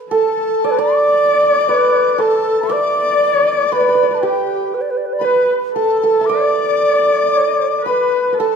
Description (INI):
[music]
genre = chinese traditional, Chinese chamber ensemble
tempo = 58 BPM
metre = 2/4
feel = rubato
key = D zhi mode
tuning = A4 = 440 Hz
[part]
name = hammered dulcimer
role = second line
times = 0.0-8.6 s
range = G4 to E5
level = -19 LUFS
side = right 8 dB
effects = none
[part]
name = xiao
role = melody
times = 0.1-8.6 s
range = G4 to D5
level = -16 LUFS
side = equal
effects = none
[part]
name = mellow large dizi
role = second line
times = 0.1-8.6 s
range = G5 to D6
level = -20 LUFS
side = left 5 dB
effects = none
[part]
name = warm horsehead fiddle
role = second line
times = 0.1-8.6 s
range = G4 to D5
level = -20 LUFS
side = left 4 dB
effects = none
[sound]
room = moderate recital hall reverb, RT60 1.4 s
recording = minimal, uncompressed stereo recording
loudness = -13 LUFS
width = side -6 dB against mid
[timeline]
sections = 0.0-8.4 A section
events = none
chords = none